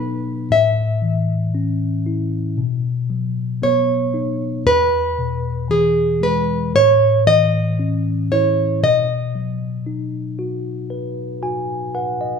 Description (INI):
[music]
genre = acoustic folk-pop ballad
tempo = 58 BPM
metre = 4/4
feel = straight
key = unclear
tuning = A4 = 436 Hz
[part]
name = nylon-string guitar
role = melody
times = 0.0-11.9 s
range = G#4 to E5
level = -16 LUFS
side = right 1 dB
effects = none
[part]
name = mellow tine electric piano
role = accompaniment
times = 0.0-12.4 s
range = E2 to G#5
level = -20 LUFS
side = left 2 dB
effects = none
[sound]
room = wet large studio reverb, RT60 1.4 s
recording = band playing live in one room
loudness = -17 LUFS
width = side -6 dB against mid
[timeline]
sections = 0.0-12.4 A section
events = none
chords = 0.0 B; 0.5 A; 2.6 Badd9; 4.7 E; 6.7 A; 8.8 B